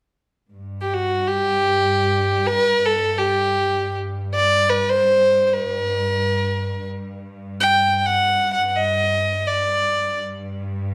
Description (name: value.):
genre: arabic.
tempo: free time.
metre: none.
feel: none.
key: G maqam suznak.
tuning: A4 = 440 Hz.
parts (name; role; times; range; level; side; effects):
rich studio cello section; drone; 0.5-10.9 s; G2; -30 LUFS; equal; none.
warm violin; melody; 0.8-10.2 s; F#4 to G5; -20 LUFS; equal; none.
room: moderate recital hall reverb, RT60 1.3 s.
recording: none.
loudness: -20 LUFS.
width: mono.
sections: 0.5-10.9 A section.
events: none.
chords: none.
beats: free time.